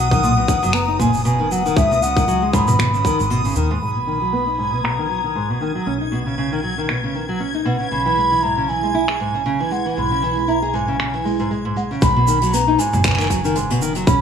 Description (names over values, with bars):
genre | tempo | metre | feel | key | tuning
folktronica | 117 BPM | 4/4 | swing 56% on 16ths | unclear | A4 = 439 Hz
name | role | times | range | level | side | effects
mellow baroque flute | melody | 0.0-14.2 s | E5 to B5 | -21 LUFS | equal | digital delay
nylon-string guitar | arpeggios | 0.0-14.2 s | G#2 to G#4 | -21 LUFS | equal | low-pass filter, digital delay
upright bass | bass | 0.0-14.2 s | F#1 to D#2 | -24 LUFS | equal | none
backwards swelling texture | texture | 0.0-12.0 s | D#6 to G#6 | -29 LUFS | left 1 dB | built-in reverb
electronic kick drum | drums | 0.1-3.2, 12.0-14.2 s | none | -19 LUFS | equal | none
soft brush drum kit | drums | 0.1-14.2 s | finger snaps, hi-hat, shaker | -26 LUFS | right 1 dB | low-pass filter on hats, low-pass filter on perc, low-pass filter on snare, low-pass filter on room
room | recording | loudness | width
light reverb, studio ambience | none | -16 LUFS | side -7 dB against mid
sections
0.0-3.8 A section; 3.8-12.0 B section; 12.0-14.2 C section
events
filter sweep on nylon-string guitar 3.8-12.0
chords
0.0 Bmaj7; 1.8 C#9sus4; 3.8 G#m7/B; 5.9 Badd9; 7.9 C#m/B; 12.0 G#m7